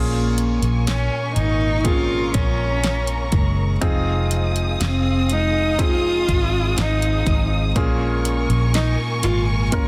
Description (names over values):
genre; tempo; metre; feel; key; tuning
pop ballad; 61 BPM; 4/4; straight; Bb minor; A4 = 444 Hz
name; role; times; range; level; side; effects
warm concert grand piano; accompaniment; 0.0-9.9 s; Bb2 to Bb4; -30 LUFS; equal; none
warm studio string section; sustained chords; 0.0-9.9 s; Ab4 to Eb6; -31 LUFS; equal; none
picked steel-string acoustic guitar; arpeggios; 0.0-9.9 s; F2 to F4; -31 LUFS; equal; none
vintage muted fingered electric bass; bass; 0.0-9.9 s; F1 to Bb1; -24 LUFS; equal; none
pop drum kit; drums; 0.4-9.9 s; hi-hat, kick drum, snare drum; -26 LUFS; equal; none
warm cello; melody; 0.9-9.4 s; C4 to F4; -26 LUFS; equal; none
room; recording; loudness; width
light reverb, studio reverb; dense, heavily limited modern master; -20 LUFS; mono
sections
0.0-9.9 A section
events
none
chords
0.0 Bbm7; 3.8 Fm7; 7.8 Bbm7